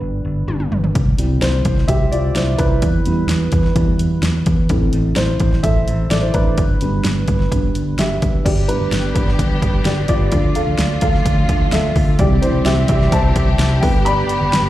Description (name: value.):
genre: piano-driven pop.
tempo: 128 BPM.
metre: 4/4.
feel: straight.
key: unclear.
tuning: A4 = 439 Hz.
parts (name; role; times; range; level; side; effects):
dark upright piano; accompaniment; 0.0-14.7 s; D3 to B5; -20 LUFS; equal; slapback echo.
fingered electric bass; bass; 0.0-14.7 s; G1 to E2; -18 LUFS; equal; none.
deep house drum kit; drums; 0.5-14.6 s; crash cymbal, hi-hat, kick drum, snare drum, toms; -18 LUFS; equal; overdrive.
clear studio string section; sustained chords; 8.5-14.7 s; D3 to G4; -24 LUFS; right 1 dB; none.
room: light reverb.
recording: live gig heard through the venue's PA, recital hall reverb.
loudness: -14 LUFS.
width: side -14 dB against mid.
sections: 0.0-8.5 A section; 8.5-14.7 B section.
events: upright piano solo 0.0-8.5, 8.5-14.7; drum fill 0.5-1.0.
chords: 0.0 G; 1.0 C; 2.8 Em; 4.7 Am; 6.6 G; 10.3 Dm; 12.2 C; 13.8 G.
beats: 0.02 0.49 | 0.95 1.42 1.89 2.36 | 2.83 3.30 3.77 4.24 | 4.71 5.17 5.64 6.11 | 6.58 7.05 7.52 7.99 | 8.45 8.92 9.39 9.86 | 10.32 10.79 11.26 11.73 | 12.20 12.66 13.13 13.60 | 14.06 14.53.